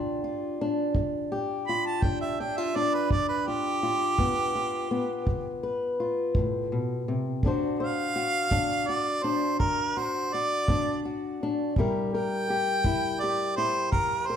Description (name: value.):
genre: acoustic country blues, solo or duo.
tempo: 56 BPM (dotted quarters).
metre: 12/8.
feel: straight.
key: G mixolydian.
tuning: A4 = 440 Hz.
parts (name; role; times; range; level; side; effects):
fingerpicked old ladder-braced acoustic guitar; accompaniment; 0.0-14.4 s; G2 to C5; -28 LUFS; left 2 dB; none.
kick drum; drums; 0.9-14.1 s; none; -29 LUFS; right 1 dB; none.
warm harmonica; melody; 1.7-14.4 s; G4 to B5; -27 LUFS; right 2 dB; none.
room: moderate recital hall reverb, RT60 1.5 s.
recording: recorded in a church or concert hall.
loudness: -25 LUFS.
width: side -8 dB against mid.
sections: 0.0-14.4 A section.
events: none.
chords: 0.0 G7; 7.4 D7; 11.8 C7.